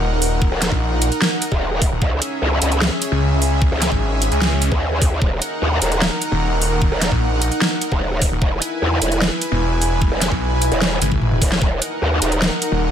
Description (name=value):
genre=heavy wobble dubstep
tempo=150 BPM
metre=4/4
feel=half-time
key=Eb phrygian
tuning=A4 = 439 Hz
part: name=supersaw pad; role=sustained chords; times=0.0-12.9 s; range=Db4 to G#5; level=-26 LUFS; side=equal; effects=sidechain pumping
part: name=snarling distorted saw bass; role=bass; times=0.0-12.9 s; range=Eb1 to Db2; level=-19 LUFS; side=equal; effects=distortion, overdrive
part: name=warbly tape-like pad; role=texture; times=0.0-12.9 s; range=Db4 to B5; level=-26 LUFS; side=right 1 dB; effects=chorus, built-in reverb, sidechain pumping
part: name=big-room dance drum kit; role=drums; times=0.2-12.7 s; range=hi-hat, snare drum, toms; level=-21 LUFS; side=equal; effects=overdrive, studio ambience
part: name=electronic kick drum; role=drums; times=0.4-11.7 s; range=none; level=-19 LUFS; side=equal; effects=studio ambience
part: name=growl bass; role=bass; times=0.5-12.5 s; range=Eb1 to E2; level=-19 LUFS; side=equal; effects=chorus, overdrive
room=little or no reverb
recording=none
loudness=-16 LUFS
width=side -9 dB against mid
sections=0.0-12.9 A section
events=drum fill 11.0-11.6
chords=0.0 Ebm; 2.0 Dbm; 5.2 Ebm; 8.4 E; 11.6 Ebm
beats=0.02 | 0.42 0.82 1.22 1.62 | 2.02 2.42 2.82 3.22 | 3.62 4.02 4.42 4.82 | 5.22 5.62 6.02 6.42 | 6.82 7.22 7.62 8.02 | 8.42 8.82 9.22 9.62 | 10.02 10.42 10.82 11.22 | 11.62 12.02 12.42 12.82